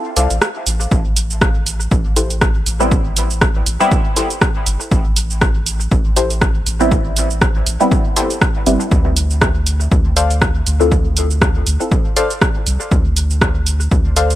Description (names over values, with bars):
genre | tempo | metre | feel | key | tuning
dub techno | 120 BPM | 4/4 | swing 56% on 16ths | A minor | A4 = 440 Hz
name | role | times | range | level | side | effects
filtered dub chord stab | riff | 0.2-14.3 s | E4 to F5 | -22 LUFS | left 3 dB | chorus, sidechain pumping, dub echo
soft dub sub bass | bass | 0.2-14.4 s | G1 to D2 | -18 LUFS | equal | sidechain pumping
punchy analog drum machine | drums | 0.2-14.4 s | hi-hat, rim click, shaker | -19 LUFS | right 2 dB | dub echo
electronic kick drum | drums | 0.9-14.0 s | none | -16 LUFS | equal | none
filtered dub chord stab | stabs | 2.8-11.9 s | G3 to A4 | -19 LUFS | equal | chorus, phaser, sidechain pumping, dub echo
room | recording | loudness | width
little or no reverb | none | -13 LUFS | side -14 dB against mid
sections
0.0-14.4 A section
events
break 0.0-0.9; filter sweep on synth stab 0.0-14.4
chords
0.0 Dm7; 0.9 Am7; 8.9 Dm7